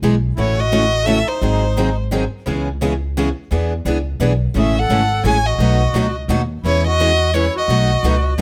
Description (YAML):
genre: acoustic string swing (jazz manouche)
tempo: 172 BPM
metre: 3/4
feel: swing 62% on 8ths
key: E major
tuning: A4 = 441 Hz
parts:
  - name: picked steel-string acoustic guitar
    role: accompaniment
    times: 0.0-8.4 s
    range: B2 to G#4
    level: -23 LUFS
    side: equal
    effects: none
  - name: picked steel-string acoustic guitar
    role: accompaniment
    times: 0.0-8.4 s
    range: B2 to B4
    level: -28 LUFS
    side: equal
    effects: none
  - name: upright bass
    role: bass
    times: 0.0-8.4 s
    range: G#1 to E2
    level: -21 LUFS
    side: equal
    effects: none
  - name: warm violin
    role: melody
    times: 0.4-2.0, 4.6-8.4 s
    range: C5 to G#5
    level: -22 LUFS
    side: equal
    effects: none
  - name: accordion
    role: second line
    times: 0.4-2.0, 4.6-8.3 s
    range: D#4 to C#5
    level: -27 LUFS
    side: equal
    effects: none
room: light reverb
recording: close, detailed microphones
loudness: -17 LUFS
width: mono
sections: 0.4-8.4 A section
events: none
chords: 0.4 A6; 1.4 G#7; 2.5 C#m7; 3.5 E7; 4.6 Amaj7; 5.6 B7; 6.6 E69; 7.7 B7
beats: 0.03 | 0.38 0.72 1.07 | 1.42 1.77 2.12 | 2.46 2.81 3.16 | 3.51 3.85 4.20 | 4.55 4.90 5.25 | 5.59 5.94 6.29 | 6.64 6.99 7.33 | 7.68 8.03 8.38